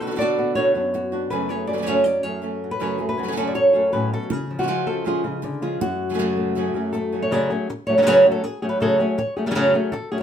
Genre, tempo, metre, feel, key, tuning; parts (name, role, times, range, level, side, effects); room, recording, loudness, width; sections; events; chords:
flamenco; 160 BPM; 4/4; straight; F# harmonic minor; A4 = 441 Hz
flamenco guitar; melody; 0.0-10.2 s; F#2 to D5; -20 LUFS; equal
flamenco guitar; stabs; 0.0-7.3 s; F#2 to G#4; -26 LUFS; right 3 dB
moderate studio reverb, RT60 0.6 s; band playing live in one room; -19 LUFS; side -9 dB against mid
0.0-7.3 A section; 7.3-10.2 B section
0.0 Bm; 1.3 F#madd9; 4.3 C#; 5.8 F#madd9